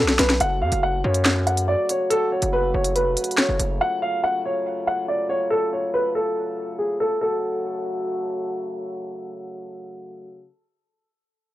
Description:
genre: hip hop, drill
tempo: 141 BPM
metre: 4/4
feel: half-time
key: F# harmonic minor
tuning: A4 = 440 Hz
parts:
  - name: dark grand piano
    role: melody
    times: 0.0-8.4 s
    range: G#4 to F#5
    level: -22 LUFS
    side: equal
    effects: low-pass filter, tape echo
  - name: dark French horn section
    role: sustained chords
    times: 0.0-10.5 s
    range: C#3 to F#4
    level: -29 LUFS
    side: equal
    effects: low-pass filter
  - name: distorted 808-style bass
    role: bass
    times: 0.0-3.8 s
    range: E#1 to F#2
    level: -24 LUFS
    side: equal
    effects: distortion
  - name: drill drum kit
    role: drums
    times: 0.1-3.7 s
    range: handclaps, hi-hat, snare drum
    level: -20 LUFS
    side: equal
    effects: none
room: small room reverb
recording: dry, gritty hardware recording, cassette tape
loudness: -20 LUFS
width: side -15 dB against mid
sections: 0.4-7.2 A section; 7.2-10.6 B section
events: drum fill 0.0-0.4; filter sweep 0.4-7.2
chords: 0.4 F#m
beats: | 0.40 0.83 1.25 1.68 | 2.11 2.53 2.96 3.38 | 3.81 4.23 4.66 5.08 | 5.51 5.94 6.36 6.79 | 7.21 7.64 8.06 8.49 | 8.91 9.34 9.77 10.19

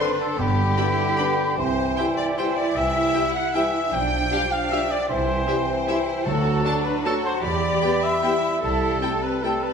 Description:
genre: classical, orchestral ballroom waltz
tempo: 153 BPM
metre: 3/4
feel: uneven beats, rubato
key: G major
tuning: A4 = 441 Hz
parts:
  - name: warm studio violin section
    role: melody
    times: 0.0-9.5 s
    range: E5 to C6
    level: -34 LUFS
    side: left 4 dB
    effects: none
  - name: concert flute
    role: second line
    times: 0.0-9.7 s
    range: G5 to C6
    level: -30 LUFS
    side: left 1 dB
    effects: none
  - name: warm symphonic violin section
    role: second line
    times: 0.0-9.7 s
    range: G4 to G5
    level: -29 LUFS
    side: left 4 dB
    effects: none
  - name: mellow bassoon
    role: accompaniment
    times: 0.0-9.7 s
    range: D3 to G3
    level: -30 LUFS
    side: equal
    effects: none
  - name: rich symphonic viola section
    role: accompaniment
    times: 0.0-9.5 s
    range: B3 to A4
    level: -33 LUFS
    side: left 2 dB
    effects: none
  - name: dark French horn section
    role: sustained chords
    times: 0.0-9.6 s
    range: G3 to A4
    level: -32 LUFS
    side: left 4 dB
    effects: none
  - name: warm trumpet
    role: stabs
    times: 0.0-9.7 s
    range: G4 to G5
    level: -26 LUFS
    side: equal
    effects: none
  - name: rich symphonic cello section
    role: bass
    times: 0.0-9.7 s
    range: B3 to G4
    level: -29 LUFS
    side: right 3 dB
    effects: none
  - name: rich symphonic double bass section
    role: bass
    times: 0.4-8.9 s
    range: G1 to E2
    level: -29 LUFS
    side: right 2 dB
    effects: none
  - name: timpani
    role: percussion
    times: 0.4-0.9, 6.3-6.8 s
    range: G2 to D3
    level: -29 LUFS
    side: equal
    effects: none
room: wet scoring stage reverb, RT60 1.8 s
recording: minimal, uncompressed stereo recording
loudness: -20 LUFS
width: side -6 dB against mid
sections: 0.0-9.7 A section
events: none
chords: 0.4 G; 1.6 C; 3.9 G7/B; 5.1 C; 6.3 D; 7.4 Em; 8.6 Am7/C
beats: 0.01 | 0.39 0.77 1.18 | 1.57 1.97 2.37 | 2.75 3.14 3.55 | 3.93 4.32 4.72 | 5.10 5.48 5.89 | 6.27 6.65 7.05 | 7.43 7.82 8.23 | 8.62 9.01 9.42

